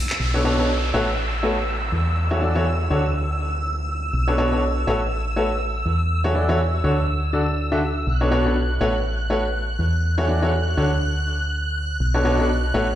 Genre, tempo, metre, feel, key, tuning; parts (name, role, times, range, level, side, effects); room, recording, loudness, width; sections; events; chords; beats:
house; 122 BPM; 4/4; swing 57% on 16ths; B minor; A4 = 440 Hz
string machine, violins; sustained chords; 0.0-13.0 s; E6 to F#6; -29 LUFS; equal; ensemble chorus
solid FM bass; bass; 0.2-13.0 s; A1 to E2; -23 LUFS; equal
downlifter; sound effects; 0.2-4.1 s; -31 LUFS; equal
clear upright piano; riff; 0.3-12.9 s; B2 to E5; -22 LUFS; left 1 dB; digital delay
moderate plate reverb, RT60 1.6 s; played on a big sound system in a bare room, stone room reverb; -19 LUFS; side -12 dB against mid
0.2-13.0 A section
0.2 Bm9; 0.9 A69; 1.9 Esus4; 2.9 N.C.; 4.1 Bm9; 4.9 A69; 5.9 Esus4; 6.8 D; 8.1 Bm9; 8.8 A69; 9.8 Esus4; 10.8 D; 12.0 Bm9
| 0.20 0.69 1.18 1.68 | 2.17 2.66 3.15 3.64 | 4.13 4.63 5.12 5.61 | 6.10 6.59 7.09 7.58 | 8.07 8.56 9.05 9.54 | 10.04 10.53 11.02 11.51 | 12.00 12.50